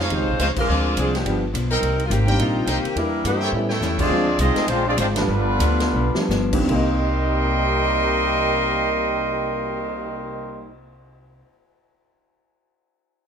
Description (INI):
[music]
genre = jazz, big band swing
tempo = 147-211 BPM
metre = 4/4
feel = swing 60% on 8ths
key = C minor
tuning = A4 = 439 Hz
[part]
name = mellow saxophone section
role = melody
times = 0.0-3.8 s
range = Eb3 to Db5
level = -24 LUFS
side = equal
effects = plate reverb
[part]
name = brilliant trumpet section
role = stabs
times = 0.0-4.1 s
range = Eb4 to Ab5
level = -28 LUFS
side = right 1 dB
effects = none
[part]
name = upright bass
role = bass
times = 0.0-11.4 s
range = G1 to A2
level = -24 LUFS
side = equal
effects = none
[part]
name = archtop guitar, miked and amplified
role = accompaniment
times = 0.1-11.5 s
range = G2 to G4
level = -30 LUFS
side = left 4 dB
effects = none
[part]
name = warm baby grand piano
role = accompaniment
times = 0.1-11.5 s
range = C3 to Eb5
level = -26 LUFS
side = right 1 dB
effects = none
[part]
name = swinging big-band drum kit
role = drums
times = 0.1-9.9 s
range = crash cymbal, cymbal swell, hi-hat, kick drum, ride cymbal, snare drum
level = -29 LUFS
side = equal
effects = none
[part]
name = mellow trombone section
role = second line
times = 3.3-10.7 s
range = C3 to Eb4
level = -26 LUFS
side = right 1 dB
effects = none
[part]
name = clear trumpet section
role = melody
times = 4.0-10.7 s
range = G3 to C6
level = -22 LUFS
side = equal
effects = plate reverb
[sound]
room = moderate large studio reverb, RT60 0.9 s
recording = none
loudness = -18 LUFS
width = side -7 dB against mid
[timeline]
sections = 0.0-4.1 A section; 4.1-6.7 B section; 6.7-10.0 C section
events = band accent 0.5, 5.1; drum fill 3.5, 5.9-6.3; slowing down 4.1-6.7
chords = 0.0 Dbmaj9; 0.7 Dm7b5; 1.3 G7; 1.8 Cm7; 3.0 Em7b5; 3.5 A7; 4.1 Dm7b5; 5.3 G7; 6.7 Cm7